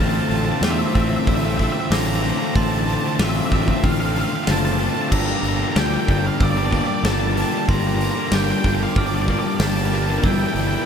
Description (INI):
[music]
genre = post-rock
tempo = 94 BPM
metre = 4/4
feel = straight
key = D minor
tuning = A4 = 440 Hz
[part]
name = octave-fuzz lead guitar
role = melody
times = 0.0-10.9 s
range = D5 to Bb5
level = -26 LUFS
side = right 1 dB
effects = distortion, ping-pong delay
[part]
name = chorused pulse-width pad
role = sustained chords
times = 0.0-10.9 s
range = F4 to E6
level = -32 LUFS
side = equal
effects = none
[part]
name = glockenspiel with brass mallets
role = arpeggios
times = 0.0-10.9 s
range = C6 to A6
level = -35 LUFS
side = right 4 dB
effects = ping-pong delay
[part]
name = twelve-string electric guitar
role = arpeggios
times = 0.0-10.9 s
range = D2 to G4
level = -30 LUFS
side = left 2 dB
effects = none
[part]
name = distorted electric guitar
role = riff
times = 0.0-10.9 s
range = D2 to G4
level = -26 LUFS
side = right 11 dB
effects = distortion
[part]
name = sludgy distorted guitar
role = riff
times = 0.0-10.9 s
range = D2 to G4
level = -25 LUFS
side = left 10 dB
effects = overdrive
[part]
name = fuzz fingered electric bass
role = bass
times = 0.0-10.7 s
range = F#1 to E2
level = -23 LUFS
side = equal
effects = overdrive
[part]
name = huge arena drum kit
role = drums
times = 0.3-10.7 s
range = crash cymbal, hi-hat, kick drum, snare drum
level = -23 LUFS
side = equal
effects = none
[sound]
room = moderate huge ambient reverb, RT60 6.2 s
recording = dreamy mix soaked in reverb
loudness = -17 LUFS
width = side -7 dB against mid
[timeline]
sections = 0.0-10.9 A section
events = none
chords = 0.0 Dm7/A; 5.1 Gm7; 10.2 Edim/G